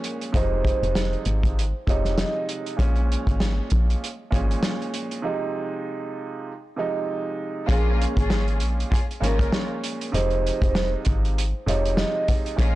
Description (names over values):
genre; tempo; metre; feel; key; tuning
hip hop, boom-bap hip-hop; 98 BPM; 4/4; swing 57% on 16ths; Bb minor; A4 = 441 Hz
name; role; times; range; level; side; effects
warm upright piano; accompaniment; 0.0-12.8 s; Bb2 to Eb4; -29 LUFS; right 3 dB; high-pass filter, low-pass filter
warm soul drum kit; drums; 0.0-12.8 s; hi-hat, kick drum, snare drum; -24 LUFS; equal; none
vibraphone with soft mallets; melody; 0.3-2.5, 7.7-12.3 s; Ab4 to Eb5; -30 LUFS; right 2 dB; high-pass filter, low-pass filter, tape echo
woody FM bass; bass; 0.3-12.8 s; F1 to Bb1; -24 LUFS; equal; tube saturation
warm symphonic string section; stabs; 7.7-12.8 s; Bb3 to Bb4; -33 LUFS; left 2 dB; high-pass filter, low-pass filter, tape echo
room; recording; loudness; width
small room ambience; blown-out, overdriven recording, overdrive; -21 LUFS; side -16 dB against mid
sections
0.0-7.7 A section; 7.7-12.8 B section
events
break 5.2-7.7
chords
0.3 Fm7; 2.8 Bbm7; 5.2 Fm7; 7.7 Bbm7; 10.1 Fm7